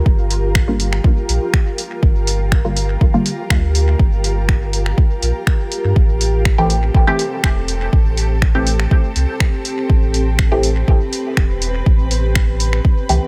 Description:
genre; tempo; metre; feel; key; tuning
dub techno; 122 BPM; 4/4; straight; unclear; A4 = 443 Hz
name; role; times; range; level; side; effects
granular cloud pad; sustained chords; 0.0-13.3 s; C4 to B4; -27 LUFS; equal; built-in reverb, sidechain pumping
warm sub bass; bass; 0.1-13.2 s; E1 to G2; -20 LUFS; equal; sidechain pumping
electronic kick drum; drums; 0.1-12.9 s; none; -16 LUFS; equal; none
soft vintage rhythm box; drums; 0.3-13.2 s; finger snaps, hi-hat; -25 LUFS; equal; dub echo
filtered dub chord stab; stabs; 0.7-3.3, 6.6-13.3 s; D3 to G4; -24 LUFS; equal; phaser, sidechain pumping, dub echo
room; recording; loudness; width
little or no reverb; none; -16 LUFS; mono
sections
0.0-13.3 A section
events
none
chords
0.0 Gm7; 6.0 Am7

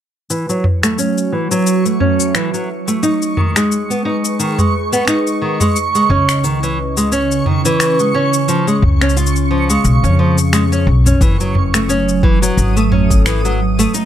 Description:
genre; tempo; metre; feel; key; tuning
folktronica; 88 BPM; 4/4; swing 56% on 16ths; F# dorian; A4 = 440 Hz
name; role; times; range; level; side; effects
warbly tape-like pad; sustained chords; 0.8-14.1 s; C#3 to E#5; -20 LUFS; right 2 dB; chorus, built-in reverb
nylon-string guitar; arpeggios; 0.3-14.1 s; D#3 to E#4; -17 LUFS; equal; low-pass filter, tape echo
minimal click drum kit; drums; 0.3-14.1 s; cabasa, finger snaps, toms; -18 LUFS; left 1 dB; small room ambience
backwards swelling texture; texture; 0.3-14.1 s; C#6 to D#6; -23 LUFS; right 4 dB; built-in reverb
upright bass; bass; 6.1-13.9 s; F#1 to E#2; -15 LUFS; left 1 dB; tube saturation
electronic kick drum; drums; 11.2-13.2 s; none; -12 LUFS; left 1 dB; overdrive, small room ambience
room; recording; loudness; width
light reverb; none; -12 LUFS; side -10 dB against mid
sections
0.3-11.2 A section; 11.2-14.1 B section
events
none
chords
0.3 F#m7; 3.0 G#m; 5.8 C#madd9; 8.5 C#; 11.2 F#m7

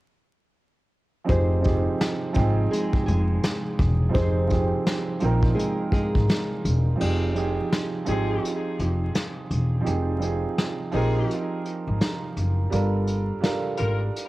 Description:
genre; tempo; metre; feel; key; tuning
hip hop, boom-bap hip-hop; 84 BPM; 4/4; swing 62% on 16ths; F dorian; A4 = 440 Hz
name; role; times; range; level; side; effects
warm upright piano; accompaniment; 1.2-14.3 s; F3 to G5; -27 LUFS; right 4 dB; cassette tape, high-pass filter, low-pass filter
nylon-string guitar; melody; 1.3-7.0 s; Ab3 to C5; -30 LUFS; left 1 dB; high-pass filter, low-pass filter, cassette tape, tape echo
upright bass; bass; 1.3-14.1 s; E1 to Bb1; -23 LUFS; equal; none
vintage brush drum kit; drums; 1.3-14.3 s; crash cymbal, hi-hat, kick drum, snare drum; -27 LUFS; equal; cassette tape
bright saxophone section; stabs; 8.1-14.0 s; F3 to Bb4; -33 LUFS; left 6 dB; high-pass filter, low-pass filter, cassette tape, tape echo
room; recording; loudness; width
small room ambience; home recording on cassette, vinyl crackle; -22 LUFS; side -18 dB against mid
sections
1.3-7.0 A section; 7.0-14.3 B section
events
kick muted 7.0-14.3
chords
1.3 Fm7; 12.7 Gm7

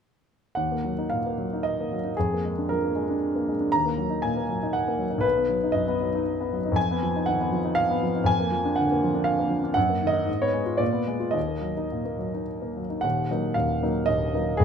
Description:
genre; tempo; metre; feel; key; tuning
classical, romantic character piece for solo piano; 105-121 BPM; 3/4; rubato; Eb minor; A4 = 440 Hz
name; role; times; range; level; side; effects
warm grand piano; solo; 0.6-14.6 s; Eb1 to Bb5; -23 LUFS; equal; none
room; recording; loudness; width
light reverb; minimal, uncompressed stereo recording; -23 LUFS; side -7 dB against mid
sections
0.6-13.0 A section; 13.0-14.6 A section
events
none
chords
0.6 Ebm; 2.1 Bb7/F; 3.7 Ebm; 5.2 B; 6.8 Fm7b5; 8.3 Bb7/F; 9.8 Ebm/Gb; 10.3 Fdim/Ab; 10.8 Bb7b9; 11.4 Ebm

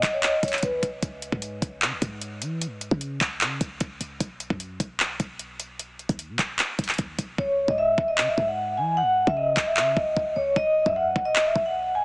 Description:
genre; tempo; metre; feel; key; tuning
hip hop, trap; 151 BPM; 4/4; half-time; C# minor; A4 = 439 Hz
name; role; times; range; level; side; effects
vibraphone with medium hard mallets; melody; 0.0-0.8, 7.4-12.0 s; B4 to G#5; -22 LUFS; equal; low-pass filter
clean 808-style bass; bass; 0.0-12.0 s; B1 to E3; -31 LUFS; equal; none
trap drum kit; drums; 0.0-11.6 s; handclaps, hi-hat, kick drum; -26 LUFS; equal; none
room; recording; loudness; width
light reverb, digital ambience; heavily compressed radio sound, small speaker sound; -22 LUFS; side -26 dB against mid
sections
0.0-12.0 A section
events
break 1.0-7.4; hi-hats muted 7.4-12.0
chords
0.0 B; 1.0 C#5; 4.2 B; 7.4 C#m; 10.6 B

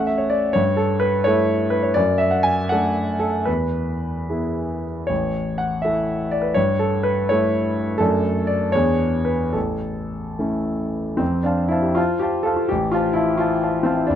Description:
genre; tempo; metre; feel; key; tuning
classical, romantic character piece for solo piano; 70-89 BPM (dotted quarters); 6/8; rubato; A major; A4 = 438 Hz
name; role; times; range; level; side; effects
warm grand piano; solo; 0.0-14.2 s; G1 to A5; -18 LUFS; equal; none
room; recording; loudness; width
light reverb; dark, warm production; -18 LUFS; side -10 dB against mid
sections
0.0-11.2 A section; 11.2-14.2 B section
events
none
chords
0.0 A; 0.6 A7/G; 2.0 D/F#; 3.5 E; 5.1 A; 6.6 A7/G; 8.0 D/F#; 8.7 E7; 9.5 A; 11.2 F; 12.7 F/A

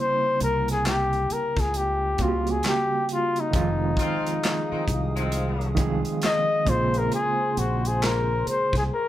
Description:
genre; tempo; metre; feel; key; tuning
R&B, neo-soul; 67 BPM; 4/4; swing 63% on 16ths; unclear; A4 = 441 Hz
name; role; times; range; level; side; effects
breathy flugelhorn; melody; 0.0-9.1 s; Eb4 to Eb5; -24 LUFS; left 2 dB; none
overdriven reed electric piano; accompaniment; 0.0-8.9 s; Db3 to Ab4; -29 LUFS; right 4 dB; tremolo
fretless electric bass; bass; 0.4-8.9 s; F1 to Db2; -28 LUFS; equal; none
tight funk drum kit; drums; 0.4-8.9 s; handclaps, hi-hat, kick drum, snare drum; -28 LUFS; equal; none
hollow soft pad; sustained chords; 3.5-9.1 s; Gb3 to Eb6; -34 LUFS; left 1 dB; chorus
warm horn section; stabs; 4.0-5.7 s; Eb3 to F4; -33 LUFS; equal; none
room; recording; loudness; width
moderate large studio reverb, RT60 1.4 s; band playing live in one room; -22 LUFS; side -13 dB against mid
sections
0.0-9.1 A section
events
flugelhorn solo 0.0-9.1; band accent 8.9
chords
0.0 C7b9; 3.5 Fm7; 6.7 Bbm9

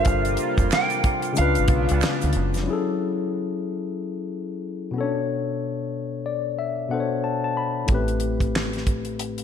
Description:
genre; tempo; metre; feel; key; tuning
R&B, neo-soul; 92 BPM; 4/4; swing 61% on 16ths; unclear; A4 = 440 Hz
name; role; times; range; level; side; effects
electric guitar through a small old amp; melody; 0.0-2.3 s; F5 to G5; -25 LUFS; right 3 dB; analog delay
barky tine electric piano; accompaniment; 0.0-9.4 s; A2 to B5; -25 LUFS; left 5 dB; slapback echo
chorused pulse-width pad; sustained chords; 0.0-2.7 s; C3 to F4; -32 LUFS; right 4 dB; none
deep dub fingered electric bass; bass; 0.0-2.7, 7.9-9.4 s; F1 to D2; -24 LUFS; right 1 dB; none
damped 70s drum kit; drums; 0.0-2.7, 7.9-9.4 s; handclaps, hi-hat, kick drum, snare drum; -24 LUFS; right 1 dB; none
tube shaker and finger snaps; percussion; 0.1-2.7 s; none; -36 LUFS; right 13 dB; none
room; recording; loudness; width
moderate scoring stage reverb, RT60 1.8 s, small room reverb; big arena sound; -22 LUFS; side -8 dB against mid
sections
0.0-2.7 A section; 2.7-9.4 B section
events
tine electric piano fill 5.9-7.9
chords
0.0 Gm11; 1.4 C#7b9; 2.7 F#m9; 5.0 Bm9; 7.9 Am9

